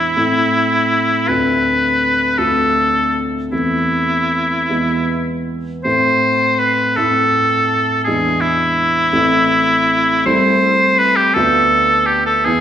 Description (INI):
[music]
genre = classical, romantic duo for oboe and grand piano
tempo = 54 BPM (dotted quarters)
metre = 6/8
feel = uneven beats, rubato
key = A minor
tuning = A4 = 440 Hz
[part]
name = clear oboe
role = melody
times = 0.0-12.6 s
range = E4 to C5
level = -14 LUFS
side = equal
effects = none
[part]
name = dark grand piano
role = accompaniment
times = 0.0-12.6 s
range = A1 to F4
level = -18 LUFS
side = left 1 dB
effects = none
[sound]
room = wet recital hall reverb, RT60 1.6 s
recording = recorded in a church or concert hall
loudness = -12 LUFS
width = side -10 dB against mid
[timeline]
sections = 0.0-5.8 A section; 5.8-12.6 A section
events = none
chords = 0.2 Am; 1.3 Dm7; 3.5 Am/E; 4.7 E; 5.8 Am; 8.1 E7; 9.1 Am; 10.3 Am/C; 11.3 Bdim/D